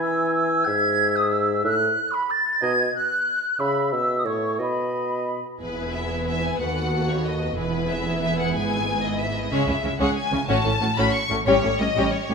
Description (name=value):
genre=classical, dramatic, fast romantic movement for symphony orchestra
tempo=184 BPM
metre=3/4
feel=straight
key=E major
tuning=A4 = 441 Hz
part: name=small flute group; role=second line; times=0.0-5.4 s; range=B5 to A6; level=-23 LUFS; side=right 1 dB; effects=none
part: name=warm oboe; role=second line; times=0.0-5.5 s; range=C#5 to G#5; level=-30 LUFS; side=right 2 dB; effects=none
part: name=mellow bassoon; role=accompaniment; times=0.0-5.5 s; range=G#2 to E3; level=-25 LUFS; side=left 1 dB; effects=none
part: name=clear symphonic violin section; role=melody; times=5.6-12.3 s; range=B4 to C#6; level=-26 LUFS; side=left 4 dB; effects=none
part: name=warm symphonic violin section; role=second line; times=5.6-12.3 s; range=A3 to C#5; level=-28 LUFS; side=left 3 dB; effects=none
part: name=warm symphonic viola section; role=accompaniment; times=5.6-12.3 s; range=G3 to F#4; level=-27 LUFS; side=equal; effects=none
part: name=warm studio double bass section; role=bass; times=5.6-12.3 s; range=E1 to D#2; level=-30 LUFS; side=right 3 dB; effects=none
part: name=warm symphonic cello section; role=bass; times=5.6-12.3 s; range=D#2 to C#3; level=-29 LUFS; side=right 3 dB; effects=none
room=wet recital hall reverb, RT60 1.4 s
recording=minimal, uncompressed stereo recording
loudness=-20 LUFS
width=side -5 dB against mid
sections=0.0-5.6 A section; 5.6-12.3 A section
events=none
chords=0.0 E; 0.7 E/G#; 1.6 F#m/A; 2.6 B5; 3.6 C#m7; 4.3 A; 4.6 B; 5.6 E; 6.6 B7/D#; 7.6 E; 8.6 E/G#; 9.5 C#m; 10.5 F#m/A; 11.5 A7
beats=0.02 0.34 | 0.67 0.99 1.32 | 1.64 1.96 2.29 | 2.61 2.94 3.26 | 3.59 3.92 4.25 | 4.60 4.94 5.28 | 5.62 5.95 6.28 | 6.61 6.93 7.26 | 7.58 7.91 8.23 | 8.55 8.88 9.20 | 9.52 9.84 10.16 | 10.48 10.81 11.14 | 11.46 11.79 12.13